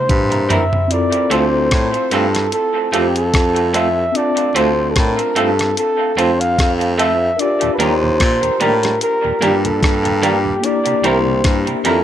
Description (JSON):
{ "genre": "lovers rock reggae", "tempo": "74 BPM", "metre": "4/4", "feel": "swing 56% on 16ths", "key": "D minor", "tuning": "A4 = 440 Hz", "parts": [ { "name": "breathy flugelhorn", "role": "melody", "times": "0.0-12.0 s", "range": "G4 to F5", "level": "-18 LUFS", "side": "equal", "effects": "tape echo" }, { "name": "mellow tine electric piano", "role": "accompaniment", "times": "0.0-12.0 s", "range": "Bb3 to A5", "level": "-23 LUFS", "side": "left 4 dB", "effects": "medium stereo tremolo, dub echo" }, { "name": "breathy baritone saxophone", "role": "bass", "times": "0.1-12.0 s", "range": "C2 to Bb2", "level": "-19 LUFS", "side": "equal", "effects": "none" }, { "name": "clean 12-bit digital drum machine", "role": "drums", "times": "0.1-12.0 s", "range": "hi-hat, kick drum, rim click, toms", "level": "-18 LUFS", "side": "equal", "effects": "none" }, { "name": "mellow tonewheel organ", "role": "accompaniment", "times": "0.3-0.8, 7.6-12.0 s", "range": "Eb2 to D4", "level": "-27 LUFS", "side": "right 5 dB", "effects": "slow rotary speaker" }, { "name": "electric guitar through a small old amp", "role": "stabs", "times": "0.5-12.0 s", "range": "G3 to Bb4", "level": "-20 LUFS", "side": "right 2 dB", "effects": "harmonic tremolo, dub echo" } ], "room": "light reverb, digital ambience", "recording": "none", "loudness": "-13 LUFS", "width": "side -10 dB against mid", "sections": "0.9-12.0 A section", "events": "drum fill 0.0-0.9", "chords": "0.0 C7; 0.9 Dm7; 7.4 Ebmaj7; 10.6 C7", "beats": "0.10 | 0.91 1.72 2.53 3.34 | 4.15 4.96 5.77 6.58 | 7.39 8.20 9.01 9.82 | 10.63 11.45" }